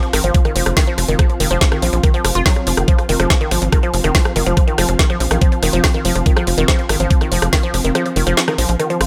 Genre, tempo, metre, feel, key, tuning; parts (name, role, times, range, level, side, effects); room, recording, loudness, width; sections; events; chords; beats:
psychedelic trance; 142 BPM; 4/4; straight; A4 = 440 Hz
woody wave-folded pluck; riff; 0.0-9.1 s; Eb3 to F4; -22 LUFS; equal; chorus, sidechain pumping, tape echo
drum and bass drum kit; drums; 0.0-9.1 s; hi-hat, rim click, snare drum; -22 LUFS; equal; overdrive
ethereal airy pad; texture; 0.0-9.1 s; C4 to C6; -28 LUFS; equal; ensemble chorus, built-in reverb, sidechain pumping
tight sequencer bass; bass; 0.1-9.1 s; F1 to Bb1; -21 LUFS; equal
electronic kick drum; drums; 0.3-7.6 s; -17 LUFS; equal; overdrive
light reverb; -16 LUFS; mono
0.0-9.1 A section
kick drops out 8.0-9.1
0.0 F5
0.34 0.77 | 1.19 1.61 2.04 2.46 | 2.88 3.30 3.73 4.15 | 4.57 4.99 5.42 5.84 | 6.26 6.68 7.11 7.53 | 7.95 8.37 8.80